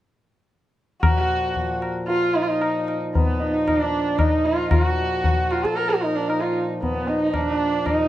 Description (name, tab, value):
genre	indian classical, Hindustani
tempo	114 BPM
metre	7/4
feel	straight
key	Bb raga bhairav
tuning	A4 = 440 Hz
part	dark sarangi	melody	1.0-8.1 s	Cb4 to Bb4	-22 LUFS	right 1 dB	none
part	hand-pumped harmonium	drone	1.0-8.1 s	Bb2 to F3	-30 LUFS	left 1 dB	none
part	tabla	percussion	1.0-8.0 s	none	-23 LUFS	left 2 dB	none
part	clear sarangi	second line	1.2-8.1 s	Cb4 to Bb4	-31 LUFS	right 5 dB	none
room	light reverb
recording	dark, warm production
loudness	-19 LUFS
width	side -14 dB against mid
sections	1.0-8.1 A section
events	none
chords	none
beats	| 1.03 1.55 2.08 2.61 3.13 3.66 4.18 | 4.71 5.23 5.76 6.28 6.80 7.33 7.85